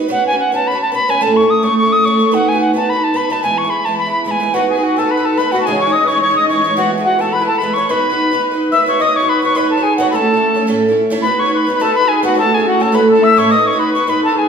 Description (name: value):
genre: celtic folk, Celtic reel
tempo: 215 BPM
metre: 4/4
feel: swing 54% on 8ths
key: B mixolydian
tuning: A4 = 443 Hz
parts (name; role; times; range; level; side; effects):
- picked twelve-string acoustic guitar; accompaniment; 0.0-14.5 s; A2 to C#5; -16 LUFS; right 2 dB; none
- mellow wooden whistle; melody; 0.1-14.5 s; F#5 to E6; -15 LUFS; left 1 dB; none
- accordion; second line; 4.5-14.5 s; F#4 to E5; -18 LUFS; left 4 dB; light tremolo tuning
room: wet recital hall reverb, RT60 1.5 s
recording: recorded in a church or concert hall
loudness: -12 LUFS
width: side -6 dB against mid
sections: 0.1-9.0 A section; 9.0-14.5 B section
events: none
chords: 0.1 Bsus2; 1.2 A; 2.3 B; 3.4 E; 4.5 B; 5.7 C#madd9; 6.8 E; 7.9 B; 9.0 Badd9; 10.1 A; 11.2 B; 12.4 A; 13.5 B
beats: | 0.10 0.38 0.66 0.93 | 1.21 1.49 1.77 2.04 | 2.32 2.60 2.88 3.16 | 3.43 3.71 3.99 4.27 | 4.54 4.82 5.10 5.38 | 5.66 5.93 6.21 6.49 | 6.77 7.05 7.33 7.61 | 7.89 8.16 8.44 8.72 | 9.00 9.28 9.56 9.84 | 10.12 10.40 10.68 10.96 | 11.25 11.53 11.81 12.09 | 12.37 12.65 12.94 13.22 | 13.50 13.79 14.07 14.35